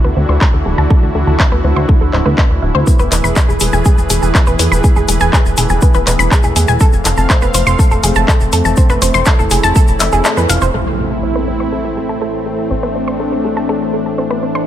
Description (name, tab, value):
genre	melodic techno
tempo	122 BPM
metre	4/4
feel	straight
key	A harmonic minor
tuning	A4 = 440 Hz
part	warm analog pad	sustained chords	0.0-14.7 s	D3 to F5	-20 LUFS	equal	chorus, sidechain pumping
part	analog pluck	arpeggios	0.0-14.6 s	G#4 to C6	-18 LUFS	equal	chorus, sidechain pumping, dub echo
part	plucky analog bass	bass	0.0-14.7 s	D1 to F2	-15 LUFS	equal	sidechain pumping
part	overtone-sweeping drone	drone	0.0-14.7 s	A2 to E3	-24 LUFS	equal	chorus, built-in reverb, sidechain pumping
part	electronic kick drum	drums	0.4-9.9 s	none	-10 LUFS	equal	none
part	house drum kit	drums	0.4-10.6 s	handclaps, hi-hat	-18 LUFS	left 1 dB	none
part	tube shaker	percussion	2.9-10.7 s	none	-23 LUFS	left 3 dB	none
part	impact	sound effects	10.7-12.7 s	none	-22 LUFS	equal	none
room	light reverb, digital ambience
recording	none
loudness	-10 LUFS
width	side -11 dB against mid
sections	0.0-10.7 A section; 10.7-14.7 B section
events	filter sweep on synth arpeggio sound 0.0-10.7; kick drops out 10.2-10.7; band accent 10.2; impact 10.7-12.7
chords	0.0 Dadd9; 2.9 E; 6.8 F; 10.7 Am